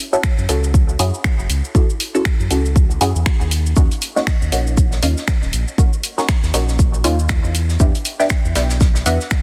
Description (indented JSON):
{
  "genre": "deep house",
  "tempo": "119 BPM",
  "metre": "4/4",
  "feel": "swing 57% on 16ths",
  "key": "unclear",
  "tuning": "A4 = 440 Hz",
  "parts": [
    { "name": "filtered dub chord stab", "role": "stabs", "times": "0.1-9.2 s", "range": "A#3 to A4", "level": "-24 LUFS", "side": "equal", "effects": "phaser, lush chorus, sidechain pumping, dub echo" },
    { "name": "house drum kit", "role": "drums", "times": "0.1-9.4 s", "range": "finger snaps, hi-hat, shaker", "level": "-26 LUFS", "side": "equal", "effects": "soft clipping on snare" },
    { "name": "electronic kick drum", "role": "drums", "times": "0.2-9.4 s", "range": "none", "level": "-18 LUFS", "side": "equal", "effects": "none" },
    { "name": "round analog bass", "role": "bass", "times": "0.4-9.2 s", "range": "D#1 to F#2", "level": "-21 LUFS", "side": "equal", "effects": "sidechain pumping" },
    { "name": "warm soul drum kit", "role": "drums", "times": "3.8-9.4 s", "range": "hi-hat, shaker, snare drum", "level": "-33 LUFS", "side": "equal", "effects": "high-pass filter on hats, high-pass filter on snare, high-pass filter on perc, high-pass filter on room" }
  ],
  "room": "studio reverb",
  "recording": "dense, heavily limited modern master, vinyl crackle",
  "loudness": "-17 LUFS",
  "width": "mono",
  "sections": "0.0-9.4 A section",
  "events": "filter sweep on synth stab 0.0-9.4",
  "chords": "0.0 F#m7; 3.5 D#m7; 7.5 Em7"
}